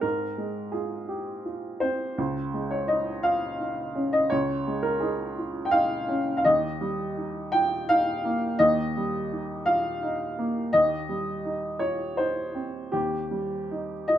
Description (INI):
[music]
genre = neoclassical minimalist piano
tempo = 84 BPM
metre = 3/4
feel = rubato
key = unclear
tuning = A4 = 440 Hz
[part]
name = warm upright piano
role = solo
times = 0.0-14.2 s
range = Db2 to G5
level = -24 LUFS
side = equal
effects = none
[sound]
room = moderate stone room reverb, RT60 0.9 s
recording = minimal, uncompressed stereo recording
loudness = -24 LUFS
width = side -11 dB against mid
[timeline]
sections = 0.0-14.2 A section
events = none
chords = 0.0 Ab6; 2.2 Dbadd9; 6.4 Eb; 10.7 Cm/Eb